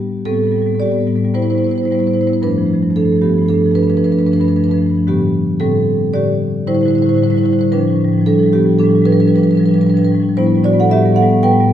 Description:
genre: classical, contemporary piece for solo marimba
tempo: 113 BPM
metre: 5/4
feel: rubato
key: A minor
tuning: A4 = 437 Hz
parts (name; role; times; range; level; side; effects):
- marimba with soft mallets; solo; 0.0-11.7 s; G2 to G5; -12 LUFS; equal; none
room: wet recital hall reverb, RT60 1.6 s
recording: recorded in a church or concert hall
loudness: -12 LUFS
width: side -10 dB against mid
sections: 0.0-11.7 A section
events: none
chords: 0.0 Am9; 2.4 G9; 5.1 Am11; 7.7 G9/A; 10.4 Asus2

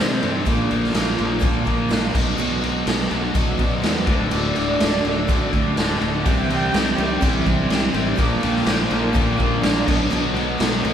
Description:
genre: classic rock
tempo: 124 BPM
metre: 4/4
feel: straight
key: unclear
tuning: A4 = 437 Hz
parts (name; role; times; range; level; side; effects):
- picked twelve-string acoustic guitar; accompaniment; 0.0-10.9 s; Bb2 to G4; -31 LUFS; right 5 dB; none
- string machine, full ensemble; sustained chords; 0.0-10.1 s; D4 to D6; -28 LUFS; equal; ensemble chorus
- cranked stack guitar; riff; 0.0-10.9 s; D2 to C4; -24 LUFS; left 4 dB; overdrive
- overdriven semi-hollow guitar; riff; 0.0-10.9 s; D2 to C4; -26 LUFS; right 5 dB; none
- fuzz fingered electric bass; bass; 0.0-10.9 s; D1 to C3; -28 LUFS; equal; overdrive
- raw garage drum kit; drums; 0.2-10.9 s; crash cymbal, kick drum, snare drum; -21 LUFS; equal; none
- cranked stack guitar; riff; 6.2-10.9 s; Bb2 to C4; -27 LUFS; equal; overdrive
room: moderate stone room reverb, RT60 1.0 s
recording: band playing live in one room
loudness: -17 LUFS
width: side -9 dB against mid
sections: 0.0-10.9 A section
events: none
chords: 0.5 Bb; 2.1 Bm; 4.1 D; 6.3 C; 8.2 Bb; 9.9 Bm

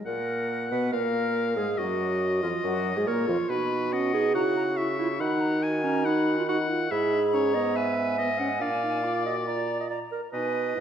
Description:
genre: quick classical-period movement for wind quintet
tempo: 140 BPM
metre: 4/4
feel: rubato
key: unclear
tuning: A4 = 440 Hz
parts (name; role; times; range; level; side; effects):
- warm French horn; accompaniment; 0.0-10.8 s; F3 to F#4; -32 LUFS; equal; none
- hollow concert flute; melody; 0.1-10.8 s; F4 to D6; -34 LUFS; left 8 dB; none
- bright oboe; second line; 0.1-10.8 s; B4 to Ab5; -32 LUFS; left 4 dB; none
- dark clarinet; accompaniment; 0.1-10.8 s; Db4 to Gb5; -27 LUFS; right 4 dB; none
- mellow bassoon; bass; 0.1-10.8 s; F2 to D#3; -32 LUFS; right 1 dB; none
room: wet recital hall reverb, RT60 1.5 s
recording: dark, warm production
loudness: -24 LUFS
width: side -8 dB against mid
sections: 0.1-10.8 A section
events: none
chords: 0.1 Gbadd11/Bb; 0.9 Fmadd11; 1.8 Ebm; 3.5 B; 4.3 Bbdim/Db (rootless); 5.2 B/D#; 6.9 E/G#; 8.6 Bb

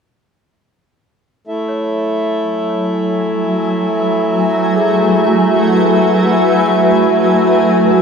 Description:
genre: ambient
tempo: free time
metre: none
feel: none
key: unclear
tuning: A4 = 440 Hz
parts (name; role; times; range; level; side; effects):
- granular cloud pad; sustained chords; 2.7-8.0 s; F#3 to G#5; -12 LUFS; equal; built-in reverb, shimmer reverb
- pedal harmonium; drone; 1.5-8.0 s; A3 to E4; -17 LUFS; equal; none
- large celesta; arpeggios; 1.7-8.0 s; G#4 to C#5; -25 LUFS; equal; ping-pong delay, shimmer reverb
room: wet huge ambient reverb, RT60 8.3 s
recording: dark, warm production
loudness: -11 LUFS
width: side -6 dB against mid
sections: 1.5-8.0 A section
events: fade-in on celesta 1.5-8.0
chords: 1.5 F#m11

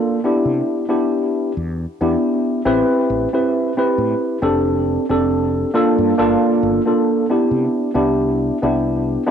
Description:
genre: vaporwave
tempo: 68 BPM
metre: 4/4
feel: swing 54% on 16ths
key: C major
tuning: A4 = 441 Hz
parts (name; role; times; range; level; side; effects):
- tine electric piano; accompaniment; 0.0-9.3 s; Bb3 to B4; -16 LUFS; equal; lush chorus, cassette tape, analog delay
- mellow fretless electric bass; bass; 0.5-9.2 s; F1 to C3; -24 LUFS; left 1 dB; none
room: light reverb, digital ambience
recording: home recording on cassette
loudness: -15 LUFS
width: side -8 dB against mid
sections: 0.0-9.3 A section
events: none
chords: 0.5 Cmaj9 (rootless); 2.7 Am7; 4.4 F69; 5.7 Gm7; 7.5 Cmaj9

